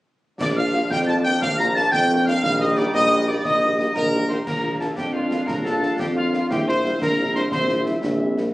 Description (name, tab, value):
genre	military-style march for wind band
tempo	118 BPM (dotted quarters)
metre	6/8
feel	straight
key	Bb major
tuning	A4 = 438 Hz
part	mellow trumpet section	melody	0.4-7.8 s	F4 to Bb5	-24 LUFS	equal	none
part	piccolo	second line	0.4-7.8 s	F5 to Bb6	-26 LUFS	left 1 dB	none
part	warm woodwind section	second line	0.4-8.5 s	C4 to Bb5	-28 LUFS	equal	none
part	bright trombone section	sustained chords	0.4-4.3 s	F3 to Eb4	-31 LUFS	right 1 dB	none
part	warm tuba	bass	0.4-8.5 s	Bb1 to F2	-23 LUFS	equal	none
part	concert snare drum, clash cymbals and concert bass drum	drums	0.4-8.5 s	none	-32 LUFS	equal	none
part	dark French horn section	accompaniment	0.6-8.4 s	G3 to G4	-29 LUFS	left 2 dB	none
part	mellow euphonium	second line	5.0-8.5 s	Bb3 to F4	-28 LUFS	equal	none
room	moderate large studio reverb, RT60 1.1 s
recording	recorded on a phone in the room, studio reverb, compression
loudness	-18 LUFS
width	side -18 dB against mid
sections	0.4-4.5 A section; 4.5-8.5 B section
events	none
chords	0.4 Bb; 2.4 Eb/Bb; 4.5 Bb; 6.5 C7/Bb